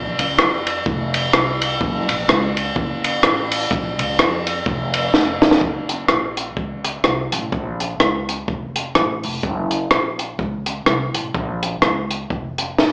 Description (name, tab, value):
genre	ska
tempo	126 BPM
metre	4/4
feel	swing 59% on 8ths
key	unclear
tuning	A4 = 440 Hz
part	upright bass	bass	0.0-12.9 s	F1 to F2	-25 LUFS	equal	none
part	compact cocktail drum kit	drums	0.2-12.9 s	hi-hat, kick drum, ride cymbal, rim click, snare drum	-18 LUFS	equal	slapback echo
room	moderate plate reverb, RT60 1.0 s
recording	live gig heard through the venue's PA, club reverb, small speaker sound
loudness	-17 LUFS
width	side -35 dB against mid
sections	0.0-5.6 A section; 5.6-12.9 B section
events	drum fill 5.1-5.6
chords	none